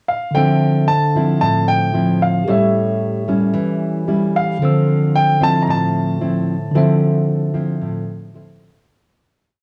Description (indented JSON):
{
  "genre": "bossa nova",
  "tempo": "112 BPM",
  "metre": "4/4",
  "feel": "straight",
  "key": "D minor",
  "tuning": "A4 = 441 Hz",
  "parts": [
    { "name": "warm baby grand piano", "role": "melody", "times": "0.1-8.3 s", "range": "E5 to Bb5", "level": "-22 LUFS", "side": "equal", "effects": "cassette tape" },
    { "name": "nylon-string guitar", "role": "accompaniment", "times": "0.3-8.8 s", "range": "A2 to E4", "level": "-20 LUFS", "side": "equal", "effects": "cassette tape" },
    { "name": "tine electric piano", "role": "accompaniment", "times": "0.3-8.9 s", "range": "D3 to E6", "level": "-22 LUFS", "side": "equal", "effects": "cassette tape" }
  ],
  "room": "moderate studio reverb, RT60 0.5 s",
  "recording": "home recording on cassette, small room ambience",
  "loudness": "-17 LUFS",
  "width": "mono",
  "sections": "0.0-0.3 pickup bar; 0.3-8.9 A section",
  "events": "fade-out 6.7-8.9",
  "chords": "0.3 Dm9; 2.5 A7; 4.6 Dm9",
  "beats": "| 0.34 0.88 1.41 1.94 | 2.48 3.01 3.55 4.08 | 4.61 5.15 5.68 6.21 | 6.75 7.28 7.81 8.34"
}